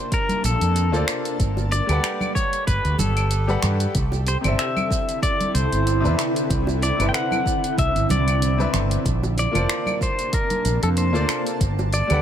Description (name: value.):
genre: sunset chillout.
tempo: 94 BPM.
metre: 4/4.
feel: swing 55% on 16ths.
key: unclear.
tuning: A4 = 440 Hz.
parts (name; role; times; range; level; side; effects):
pedal steel guitar; melody; 0.0-12.2 s; A4 to G5; -25 LUFS; left 2 dB; digital delay.
bright grand piano; accompaniment; 0.0-12.2 s; C3 to A5; -29 LUFS; moving between left 5 dB and right 4 dB; auto-pan, vintage 12-bit sampler grit, tape echo.
shimmering ambient pad; sustained chords; 0.0-12.2 s; C3 to A5; -28 LUFS; right 2 dB; chorus, built-in reverb.
deep house drum kit; drums; 0.1-12.2 s; claves, finger snaps, hi-hat, shaker; -28 LUFS; right 1 dB; none.
electronic kick drum; drums; 0.1-11.7 s; none; -25 LUFS; equal; none.
congas and bongos; percussion; 0.3-12.2 s; none; -30 LUFS; right 2 dB; none.
mellow fretless electric bass; bass; 0.4-12.2 s; F1 to G2; -21 LUFS; equal; none.
room: light reverb.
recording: none.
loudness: -19 LUFS.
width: side -9 dB against mid.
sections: 0.0-12.2 A section.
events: none.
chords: 0.0 Bbmaj9; 1.4 Gmaj9; 3.9 Cmaj9; 9.1 Bbmaj9; 11.6 Gmaj9.